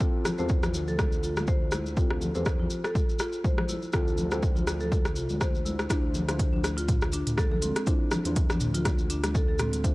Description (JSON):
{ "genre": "afro house", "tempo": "122 BPM", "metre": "4/4", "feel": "swing 56% on 16ths", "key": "unclear", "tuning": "A4 = 440 Hz", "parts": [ { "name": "marimba with medium mallets", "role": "arpeggios", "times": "0.0-9.9 s", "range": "C4 to C5", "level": "-33 LUFS", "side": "equal", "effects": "sidechain pumping, low-pass filter, tape echo" }, { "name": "deep mellow chord stab", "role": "stabs", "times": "0.0-9.9 s", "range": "C4 to C5", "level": "-36 LUFS", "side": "equal", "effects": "chorus, sidechain pumping, tape echo" }, { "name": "electronic kick drum", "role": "drums", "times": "0.0-9.9 s", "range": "none", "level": "-27 LUFS", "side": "equal", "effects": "overdrive, studio reverb" }, { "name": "maracas", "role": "percussion", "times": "0.0-9.9 s", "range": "none", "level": "-42 LUFS", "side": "left 1 dB", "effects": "none" }, { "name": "congas", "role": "percussion", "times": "0.2-9.7 s", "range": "none", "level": "-35 LUFS", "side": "left 1 dB", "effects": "none" }, { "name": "afro-pop drum kit", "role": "drums", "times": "0.3-9.9 s", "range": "hi-hat, rim click, toms", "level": "-33 LUFS", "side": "equal", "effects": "studio reverb" }, { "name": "dark detuned saw bass", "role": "bass", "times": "0.4-9.9 s", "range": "C2 to E2", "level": "-33 LUFS", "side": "equal", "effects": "tube saturation, sidechain pumping" } ], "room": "little or no reverb", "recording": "dry, gritty hardware recording, cassette tape", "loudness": "-24 LUFS", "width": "side -21 dB against mid", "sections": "0.0-9.9 A section", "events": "none", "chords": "0.0 Fadd9/D; 5.9 Dm9" }